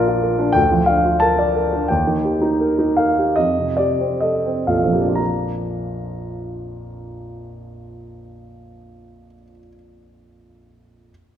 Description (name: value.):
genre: classical, romantic character piece for solo piano.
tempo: 61-99 BPM.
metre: 4/4.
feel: rubato.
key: Bb major.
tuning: A4 = 440 Hz.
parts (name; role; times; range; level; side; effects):
warm grand piano; solo; 0.0-11.1 s; Bb1 to Bb5; -17 LUFS; equal; none.
room: wet recital hall reverb, RT60 1.7 s.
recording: minimal, uncompressed stereo recording.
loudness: -16 LUFS.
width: side -9 dB against mid.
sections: 0.0-5.2 A section; 5.2-8.9 B section.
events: slowing down 0.0-5.2.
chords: 0.0 Bb; 0.6 Bb/D; 1.9 Eb; 3.4 Fadd9; 5.2 Bb.